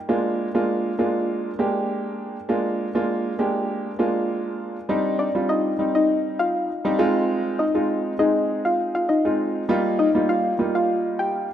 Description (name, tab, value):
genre	pop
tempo	100 BPM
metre	4/4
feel	straight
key	unclear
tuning	A4 = 440 Hz
part	warm concert grand piano	accompaniment	0.1-11.5 s	G3 to Ab4	-22 LUFS	right 1 dB	none
part	soft round pluck	melody	5.2-11.3 s	D4 to G5	-22 LUFS	left 2 dB	chorus
room	wet plate reverb, RT60 3.6 s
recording	rough home demo mix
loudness	-20 LUFS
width	side -10 dB against mid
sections	0.0-4.9 A section; 4.9-11.5 B section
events	none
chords	0.1 Bb7; 4.9 Cmadd9; 7.0 Fm7; 9.7 Ebadd9/G